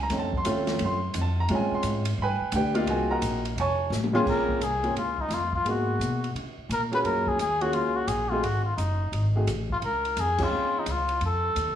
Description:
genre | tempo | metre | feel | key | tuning
jazz, small-group swing and bop | 173 BPM | 4/4 | swing 64% on 8ths | Bb minor | A4 = 440 Hz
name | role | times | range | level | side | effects
warm grand piano | accompaniment | 0.0-10.8 s | Bb2 to Db6 | -28 LUFS | right 1 dB | none
upright bass | bass | 0.0-11.8 s | F1 to Db3 | -29 LUFS | equal | none
open jazz drum kit | drums | 0.1-11.7 s | crash cymbal, hi-hat, kick drum, ride cymbal, snare drum, toms | -35 LUFS | equal | none
trumpet with cup mute | melody | 4.1-11.8 s | Eb4 to Cb5 | -27 LUFS | left 2 dB | none
room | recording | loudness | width
moderate large studio reverb, RT60 1.2 s | small room reverb | -24 LUFS | side -10 dB against mid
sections
0.0-4.3 A section; 4.3-11.8 B section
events
drum fill 3.9-4.3; band accent 10.3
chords
0.1 F7b13; 1.5 Bbm7; 2.2 G7b9; 2.9 Cm7b5; 3.6 F; 4.3 Bbm7; 5.6 Abm9; 6.3 Db6; 7.0 Gbmaj9; 8.4 Ab7(no3); 9.8 Dbmaj7; 11.2 F7

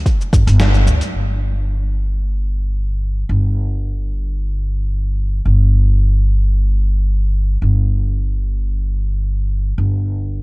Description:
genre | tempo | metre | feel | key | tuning
organic downtempo | 111 BPM | 4/4 | swing 54% on 16ths | unclear | A4 = 440 Hz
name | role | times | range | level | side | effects
dusty soul sampler-style drum kit | drums | 0.1-1.1 s | cabasa, hi-hat, snare drum | -23 LUFS | equal | studio reverb
upright bass | bass | 0.3-10.4 s | G1 to D2 | -15 LUFS | equal | none
room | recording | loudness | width
little or no reverb | dark, warm production | -15 LUFS | side -24 dB against mid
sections
0.0-1.1 A section; 1.1-10.4 B section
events
band accent 0.6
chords
none

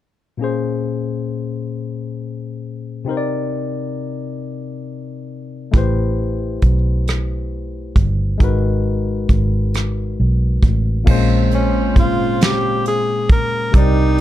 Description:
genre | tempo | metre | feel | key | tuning
slow six-eight R&B | 45 BPM (dotted quarters) | 6/8 | straight | Bb dorian | A4 = 440 Hz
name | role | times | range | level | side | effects
barky tine electric piano | accompaniment | 0.4-14.2 s | Bb2 to D5 | -23 LUFS | left 5 dB | overdrive
vintage muted fingered electric bass | bass | 5.7-14.2 s | G1 to C2 | -18 LUFS | right 1 dB | none
soft brush drum kit | drums | 5.7-14.2 s | crash cymbal, hi-hat, kick drum, rim click, snare drum | -16 LUFS | right 1 dB | none
dark horn section | stabs | 11.1-14.2 s | Db3 to D5 | -26 LUFS | right 5 dB | ping-pong delay
breathy tenor saxophone | melody | 11.5-14.2 s | Db4 to Bb4 | -19 LUFS | right 1 dB | none
room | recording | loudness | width
little or no reverb | dark, warm production | -16 LUFS | side -13 dB against mid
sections
0.4-11.1 A section; 11.1-14.2 B section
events
none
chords
0.4 Bbm9; 3.1 Cm9; 5.7 Am9; 8.4 Abm9; 11.1 Bbm9

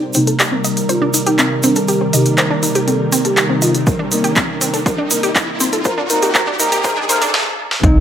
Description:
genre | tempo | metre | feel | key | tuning
melodic techno | 121 BPM | 4/4 | straight | unclear | A4 = 439 Hz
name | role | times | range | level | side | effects
expressive synth lead | melody | 0.0-8.0 s | D4 to Bb4 | -21 LUFS | equal | chorus, digital delay
evolving wavetable pad | sustained chords | 0.0-8.0 s | C3 to Bb4 | -22 LUFS | right 1 dB | chorus, built-in reverb, sidechain pumping
swarming drone | drone | 0.8-7.3 s | Eb3 to D5 | -27 LUFS | right 2 dB | none
riser | sound effects | 0.0-7.3 s | none | -25 LUFS | right 1 dB | none
analog pluck | arpeggios | 0.1-8.0 s | C4 to Eb5 | -20 LUFS | equal | chorus, sidechain pumping, digital delay
analog synth brass | stabs | 0.1-7.3 s | C3 to Eb4 | -22 LUFS | left 1 dB | chorus, sidechain pumping, digital delay
techno drum kit | drums | 0.1-7.9 s | handclaps, hi-hat, snare drum | -18 LUFS | equal | high-pass filter on snare, high-pass filter on hats, high-pass filter on room
tube shaker | percussion | 0.1-7.3 s | none | -23 LUFS | right 4 dB | none
electronic kick drum | drums | 3.9-7.9 s | none | -17 LUFS | equal | none
dark detuned synth bell | second line | 7.8-8.0 s | Eb4 | -17 LUFS | equal | chorus, tremolo, vintage 12-bit sampler grit, sidechain pumping
tight sequencer bass | bass | 7.8-8.0 s | C2 | -13 LUFS | equal | sidechain pumping
room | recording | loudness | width
moderate lush hall reverb, RT60 1.6 s, digital ambience | high-pass filter | -13 LUFS | side -9 dB against mid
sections
0.0-7.8 A section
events
build-up 0.0-7.8; riser 0.0-7.3; filter sweep on synth arpeggio sound 0.0-7.8; filter sweep on analog synth lead 0.0-7.8; filter sweep on analog polysynth 0.0-7.8; drum fill 7.3-7.8; stop 7.3-7.8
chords
0.0 Cm7

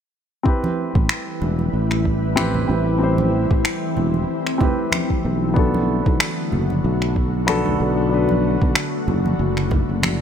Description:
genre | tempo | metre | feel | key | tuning
sunset chillout | 94 BPM | 4/4 | swing 56% on 16ths | A dorian | A4 = 438 Hz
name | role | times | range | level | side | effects
warm concert grand piano | accompaniment | 0.4-10.2 s | B3 to C5 | -24 LUFS | moving between left 4 dB and right 2 dB | auto-pan, digital delay, shimmer reverb
ethereal airy pad | sustained chords | 0.8-10.2 s | D3 to B4 | -24 LUFS | left 1 dB | ensemble chorus, built-in reverb, shimmer reverb
electronic kick drum | drums | 0.5-9.9 s | none | -19 LUFS | equal | overdrive, studio reverb
congas | percussion | 0.6-10.2 s | none | -28 LUFS | right 2 dB | none
sustaining fretless electric bass | bass | 1.0-10.2 s | E1 to B1 | -21 LUFS | equal | tube saturation, analog chorus
electronic finger snaps | drums | 1.1-10.2 s | none | -22 LUFS | left 1 dB | overdrive, studio reverb
room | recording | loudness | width
light reverb | none | -17 LUFS | side -8 dB against mid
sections
0.5-10.2 A section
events
none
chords
0.5 Am9; 5.6 Bm7

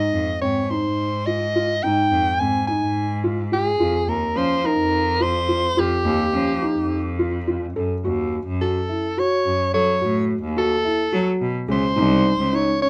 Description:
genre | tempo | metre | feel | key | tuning
contemporary instrumental, chamber music in an uneven meter | 213 BPM (eighths) | 7/8 | straight | unclear | A4 = 440 Hz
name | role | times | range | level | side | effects
clear soprano saxophone | melody | 0.0-12.9 s | G4 to Ab5 | -24 LUFS | equal | none
felt-muted upright piano | arpeggios | 0.0-12.9 s | C4 to A4 | -26 LUFS | equal | none
rich cello | bass | 0.1-12.6 s | C2 to Gb3 | -26 LUFS | equal | none
room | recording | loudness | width
moderate studio reverb, RT60 0.6 s | none | -21 LUFS | mono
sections
0.0-7.8 A section; 7.8-12.9 B section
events
none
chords
0.0 Ab5; 3.8 Fsus2; 7.8 Gbm; 11.7 Dbsus2

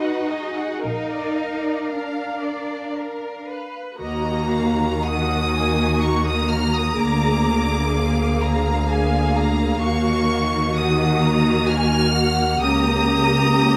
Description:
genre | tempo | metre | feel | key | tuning
classical, slow romantic movement for string orchestra | 55-66 BPM | 3/4 | rubato | Eb minor | A4 = 440 Hz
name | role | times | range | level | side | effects
rich studio violin section | melody | 0.0-13.8 s | D#5 to F6 | -28 LUFS | equal | none
warm studio violin section | second line | 0.0-13.8 s | Ab4 to Bb5 | -31 LUFS | equal | none
rich symphonic viola section | accompaniment | 0.0-13.8 s | Bb3 to F#5 | -26 LUFS | equal | none
rich studio cello section | bass | 0.0-13.8 s | Db3 to D#4 | -27 LUFS | equal | none
bright studio double bass section | bass | 0.8-13.8 s | Bb1 to Eb2 | -26 LUFS | equal | none
room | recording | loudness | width
moderate scoring stage reverb, RT60 1.6 s | close, detailed microphones | -20 LUFS | mono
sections
0.0-4.0 A section; 4.0-13.8 A section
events
none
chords
0.0 B; 0.8 Bb; 4.0 Ebm; 7.0 Bb7/D; 9.8 Ebm; 12.6 Eb7/Db

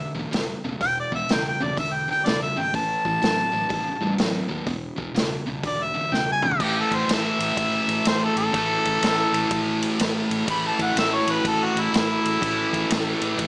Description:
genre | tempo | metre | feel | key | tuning
blues rock power trio and southern rock | 124 BPM | 4/4 | swing 65% on 8ths | A major | A4 = 439 Hz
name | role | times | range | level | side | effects
clear harmonica | melody | 0.0-12.9 s | E4 to B5 | -23 LUFS | equal | overdrive
fuzz guitar | riff | 0.0-13.5 s | E2 to A3 | -25 LUFS | equal | distortion
vintage muted fingered electric bass | bass | 0.0-13.5 s | E1 to D#2 | -34 LUFS | equal | none
vintage drum kit | drums | 0.3-13.5 s | crash cymbal, hi-hat, kick drum, ride cymbal, snare drum, toms | -26 LUFS | equal | none
room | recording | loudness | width
moderate studio reverb, RT60 0.6 s | small speaker sound | -20 LUFS | side -24 dB against mid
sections
0.0-6.6 A section; 6.6-13.5 B section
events
drum fill 6.1-6.6; harmonica solo 6.6-13.5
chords
0.0 E5; 2.7 A5; 4.7 E5; 6.6 A5

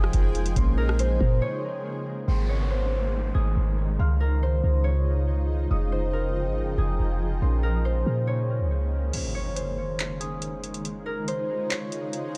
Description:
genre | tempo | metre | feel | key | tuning
hip hop, atmospheric cloud-rap | 140 BPM | 4/4 | half-time | Ab major | A4 = 440 Hz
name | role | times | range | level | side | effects
concert harp | melody | 0.0-12.4 s | Ab4 to Db5 | -34 LUFS | equal | dub echo
shimmering ambient pad | sustained chords | 0.0-12.4 s | Db3 to G5 | -35 LUFS | equal | chorus, built-in reverb, sidechain pumping
clean 808-style bass | bass | 0.0-9.1 s | F1 to Bb2 | -26 LUFS | equal | none
booming analog drum machine | drums | 0.0-1.4, 9.1-12.4 s | crash cymbal, handclaps, hi-hat, kick drum, rim click | -29 LUFS | equal | none
felt-muted upright piano | texture | 0.0-9.1 s | Ab3 to F6 | -42 LUFS | equal | none
downlifter and impact | sound effects | 2.3-5.7, 9.1-10.8 s | none | -40 LUFS | equal | none
room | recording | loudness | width
little or no reverb | echo-heavy mix | -26 LUFS | mono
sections
0.0-2.3 A section; 2.3-9.1 B section; 9.1-12.4 C section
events
break 1.4-2.3, 9.1-12.4; impact 9.1-10.8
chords
0.0 Fm7; 0.6 Bbmadd9; 2.3 Abmaj7; 4.0 Dbmaj7; 5.7 Fm7; 7.4 Bbmadd9; 9.1 Ab; 10.8 Dbmaj7

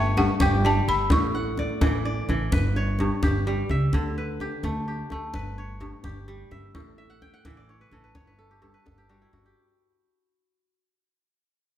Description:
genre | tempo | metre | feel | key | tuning
west african traditional, West African string and xylophone music | 85 BPM (dotted quarters) | 12/8 | straight | unclear | A4 = 441 Hz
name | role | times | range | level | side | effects
balafon | melody | 0.0-2.0 s | E5 to C#6 | -26 LUFS | left 1 dB | none
kora | arpeggios | 0.0-10.9 s | G2 to G5 | -28 LUFS | equal | none
upright bass | bass | 0.0-9.5 s | G1 to D2 | -27 LUFS | equal | none
djembe | percussion | 0.1-9.5 s | none | -27 LUFS | left 1 dB | none
room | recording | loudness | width
moderate recital hall reverb, RT60 1.4 s | none | -22 LUFS | side -11 dB against mid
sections
0.0-9.6 A section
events
fade-out 0.0-9.6; kora fill 7.0-9.6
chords
0.0 G; 1.1 A; 2.5 G; 3.9 D5; 5.3 G; 6.8 A5; 8.2 Gmaj9#11

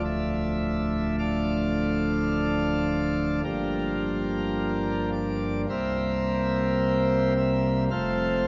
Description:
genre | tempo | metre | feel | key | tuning
classical, chorale-style piece for pipe organ | 53 BPM | 4/4 | straight | unclear | A4 = 441 Hz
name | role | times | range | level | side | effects
pipe organ, principal chorus | solo | 0.0-8.5 s | D1 to F5 | -26 LUFS | equal | none
room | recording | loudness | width
wet cathedral reverb, RT60 6.2 s | in a vast, echoing space, vinyl crackle, nothing above 7.6 kHz | -26 LUFS | mono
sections
0.0-8.5 A section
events
none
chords
0.0 Dm; 3.4 Gm7; 5.7 C7; 7.9 F

